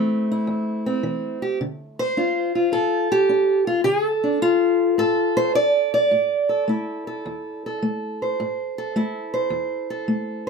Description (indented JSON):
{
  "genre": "acoustic country blues, solo or duo",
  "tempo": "106 BPM",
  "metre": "4/4",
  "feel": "swing 68% on 8ths",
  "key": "A minor",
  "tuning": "A4 = 436 Hz",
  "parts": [
    { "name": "fingerpicked steel-string acoustic guitar", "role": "solo", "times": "0.0-10.5 s", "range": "E2 to D5", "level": "-20 LUFS", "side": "equal", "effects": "none" }
  ],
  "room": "moderate small room reverb, RT60 0.5 s",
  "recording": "none",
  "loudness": "-19 LUFS",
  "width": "side -5 dB against mid",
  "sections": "0.0-10.5 A section",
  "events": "none",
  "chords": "0.0 Am; 1.6 Dm; 6.1 Am"
}